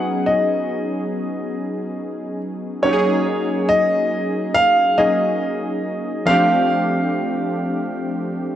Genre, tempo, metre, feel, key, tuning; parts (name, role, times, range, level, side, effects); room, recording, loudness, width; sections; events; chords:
R&B; 70 BPM; 4/4; swing 54% on 16ths; A4 = 440 Hz
warm grand piano; melody; 0.0-8.6 s; Db5 to Gb5; -20 LUFS; equal
warm analog keys; accompaniment; 0.0-8.6 s; F3 to Ab4; -21 LUFS; equal; chorus
light reverb, small room ambience; -17 LUFS; side -11 dB against mid
0.0-8.6 A section
0.0 Db9sus4; 2.8 Ab9sus4; 6.3 G9sus4